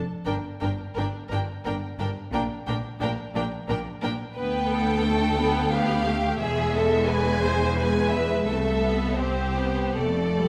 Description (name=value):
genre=classical, slow romantic movement for string orchestra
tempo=88 BPM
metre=3/4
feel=rubato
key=A minor from 4.4 s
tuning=A4 = 440 Hz
part: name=warm studio violin section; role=melody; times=0.3-10.5 s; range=C5 to G#5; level=-34 LUFS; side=equal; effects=none
part: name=rich studio violin section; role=second line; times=0.3-10.5 s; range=G4 to C5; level=-31 LUFS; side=equal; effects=none
part: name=warm studio viola section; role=accompaniment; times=0.3-10.5 s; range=G3 to D4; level=-33 LUFS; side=equal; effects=none
part: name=rich studio cello section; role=bass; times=0.3-10.5 s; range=C2 to Bb2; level=-31 LUFS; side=equal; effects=none
part: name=warm studio double bass section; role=bass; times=0.3-10.5 s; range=E1 to D2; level=-33 LUFS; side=equal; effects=none
room=wet scoring stage reverb, RT60 1.6 s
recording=none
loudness=-25 LUFS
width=mono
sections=0.0-10.5 A section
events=none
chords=0.3 G5; 2.3 Gm/Bb; 4.4 Bm7b5/D; 6.4 E; 8.5 Am/C; 10.0 Dm/F